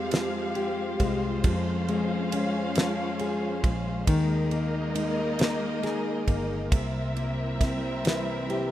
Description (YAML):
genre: six-eight pop ballad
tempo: 45 BPM (dotted quarters)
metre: 6/8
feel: straight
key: unclear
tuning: A4 = 441 Hz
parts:
  - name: fingerpicked plugged-in steel-string acoustic guitar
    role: accompaniment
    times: 0.0-8.7 s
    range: F2 to Ab4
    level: -29 LUFS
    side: left 3 dB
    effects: none
  - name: dark symphonic string section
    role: sustained chords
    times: 0.0-8.7 s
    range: G3 to F5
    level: -31 LUFS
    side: right 2 dB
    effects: none
  - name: vintage muted fingered electric bass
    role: bass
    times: 0.0-8.7 s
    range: G1 to F2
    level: -34 LUFS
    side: right 1 dB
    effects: none
  - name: damped 70s drum kit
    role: drums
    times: 0.1-8.7 s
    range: kick drum, ride cymbal, snare drum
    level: -27 LUFS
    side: right 1 dB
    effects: none
room: studio ambience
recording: rough home demo mix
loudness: -25 LUFS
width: side -13 dB against mid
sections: 0.0-8.7 A section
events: none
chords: 0.0 Fmadd9; 1.4 Dbmaj7/F; 4.1 Ebsus4; 6.7 C7